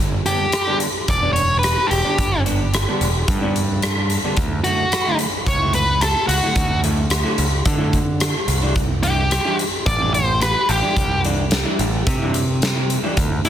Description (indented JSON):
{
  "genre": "quiet-loud alternative rock",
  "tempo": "109 BPM",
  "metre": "4/4",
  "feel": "straight",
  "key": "unclear",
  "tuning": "A4 = 440 Hz",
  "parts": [
    { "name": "growling picked electric bass", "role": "bass", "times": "0.0-13.4 s", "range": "E1 to D3", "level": "-21 LUFS", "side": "equal", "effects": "overdrive" },
    { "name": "electric guitar through a small old amp", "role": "arpeggios", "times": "0.1-13.5 s", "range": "D3 to E4", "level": "-26 LUFS", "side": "right 1 dB", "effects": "wide subtle chorus, tape echo" },
    { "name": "octave-fuzz lead guitar", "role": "melody", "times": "0.3-13.5 s", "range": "F#4 to D5", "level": "-21 LUFS", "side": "equal", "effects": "distortion, plate reverb, tape echo" },
    { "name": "huge arena drum kit", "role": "drums", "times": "0.3-13.5 s", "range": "hi-hat, kick drum, rim click, snare drum", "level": "-20 LUFS", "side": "equal", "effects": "soft clipping on snare" }
  ],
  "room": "light reverb",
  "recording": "dense, heavily limited modern master",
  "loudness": "-16 LUFS",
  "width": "side -10 dB against mid",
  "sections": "0.0-13.5 A section",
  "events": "none",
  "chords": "0.0 G; 4.4 Dadd9; 8.5 Cadd9",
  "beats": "0.53 1.08 1.63 | 2.18 2.73 3.27 3.82 | 4.37 4.92 5.47 6.01 | 6.56 7.11 7.66 8.21 | 8.76 9.31 9.86 10.41 | 10.96 11.51 12.06 12.62 | 13.17"
}